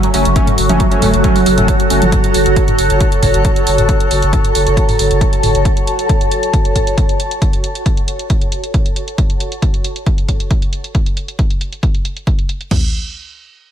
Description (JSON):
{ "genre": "driving peak-time techno", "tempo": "136 BPM", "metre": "4/4", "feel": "straight", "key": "F# minor", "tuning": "A4 = 442 Hz", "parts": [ { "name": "overdriven synth lead", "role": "riff", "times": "0.0-2.1 s", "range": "E#3 to A3", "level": "-18 LUFS", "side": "right 2 dB", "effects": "distortion, phaser, tube saturation, sidechain pumping, diffuse ambient delay" }, { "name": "overtone-sweeping drone", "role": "drone", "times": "0.1-5.7 s", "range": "F#3 to F#4", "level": "-20 LUFS", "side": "equal", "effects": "chorus, built-in reverb, sidechain pumping" }, { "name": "techno drum kit", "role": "drums", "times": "0.0-12.7 s", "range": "hi-hat, toms", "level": "-22 LUFS", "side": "right 1 dB", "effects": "overdrive, sidechain pumping on hats, low-pass filter on hats, sidechain pumping on perc, low-pass filter on perc, sidechain pumping on toms, low-pass filter on toms, low-pass filter on snare" }, { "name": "granular cloud pad", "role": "texture", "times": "0.1-9.2 s", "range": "F#4 to A5", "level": "-18 LUFS", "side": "equal", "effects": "built-in reverb, sidechain pumping" }, { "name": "sync-sweep polysynth", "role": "stabs", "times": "0.1-2.0 s", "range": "F#3 to C#4", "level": "-19 LUFS", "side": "equal", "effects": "chorus, sidechain pumping, diffuse ambient delay" }, { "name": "saturated sub bass", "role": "bass", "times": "0.1-5.7 s", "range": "F#1", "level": "-18 LUFS", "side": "equal", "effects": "overdrive, sidechain pumping, low-pass filter" }, { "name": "punchy analog drum machine", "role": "drums", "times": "0.4-12.8 s", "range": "crash cymbal, kick drum, toms", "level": "-15 LUFS", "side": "equal", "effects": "none" } ], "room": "moderate lush hall reverb, RT60 1.5 s", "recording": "dreamy mix soaked in reverb", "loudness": "-12 LUFS", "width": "side -10 dB against mid", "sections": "0.0-12.7 A section; 12.7-13.7 B section", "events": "filter sweep on drum 0.0-12.7; filter sweep on analog synth lead 0.0-2.1; filter sweep on analog polysynth 0.0-2.1", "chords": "0.0 F#m; 12.7 N.C." }